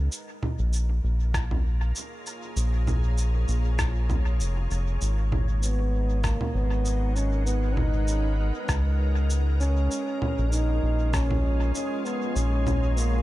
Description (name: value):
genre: ambient dub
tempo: 98 BPM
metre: 4/4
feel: swing 55% on 16ths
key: unclear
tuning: A4 = 440 Hz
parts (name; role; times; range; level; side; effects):
- soft additive organ-like pad; sustained chords; 0.0-13.2 s; G#3 to A#5; -36 LUFS; left 1 dB; ensemble chorus, built-in reverb
- round analog bass; bass; 0.0-13.2 s; E#1 to C#2; -24 LUFS; equal; none
- electronic cabasa, congas and rim click; drums; 0.1-13.1 s; none; -33 LUFS; right 1 dB; dub echo
- electronic kick drum; drums; 1.3-11.3 s; none; -30 LUFS; equal; none
- trombone with bucket mute; melody; 5.6-13.2 s; A#3 to D#4; -30 LUFS; right 1 dB; dub echo
room: little or no reverb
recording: none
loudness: -23 LUFS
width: side -16 dB against mid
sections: 0.0-13.2 A section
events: fade-in on ambient pad 0.0-13.2; kick drops out 12.4-13.2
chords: 0.1 A#m7; 5.0 G#m7; 9.9 A#m7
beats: | 0.12 0.73 1.34 1.95 | 2.56 3.18 3.79 4.40 | 5.01 5.62 6.24 6.85 | 7.46 8.07 8.69 9.30 | 9.91 10.52 11.13 11.75 | 12.36 12.97